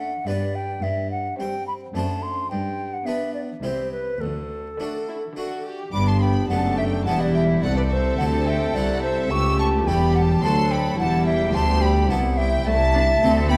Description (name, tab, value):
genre	classical, baroque-style concerto movement with solo episodes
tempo	107 BPM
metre	3/4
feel	straight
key	G major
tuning	A4 = 440 Hz
part	hollow concert flute	melody	0.0-13.6 s	A4 to C#6	-28 LUFS	equal	none
part	rich studio violin section	melody	0.0-13.6 s	C4 to E6	-34 LUFS	equal	none
part	rich chamber violin section	second line	0.0-13.6 s	A3 to A4	-33 LUFS	equal	none
part	harpsichord	accompaniment	0.0-13.6 s	C2 to C5	-33 LUFS	equal	none
part	rich chamber viola section	accompaniment	0.0-13.6 s	D3 to D4	-31 LUFS	equal	none
part	warm chamber cello section	bass	0.3-13.6 s	C2 to G2	-27 LUFS	equal	none
part	clear chamber double bass section	bass	5.9-13.6 s	E1 to D2	-27 LUFS	equal	none
room	wet recital hall reverb, RT60 1.4 s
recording	dark, warm production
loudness	-22 LUFS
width	mono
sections	0.0-5.9 A section; 5.9-13.6 B section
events	none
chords	0.3 G; 0.8 C5/G; 1.9 D7/F#; 2.5 G; 3.6 C; 4.2 D; 5.9 G; 7.1 Em; 7.6 C; 9.3 A7/C#; 10.4 D; 11.0 Em; 12.7 Am/C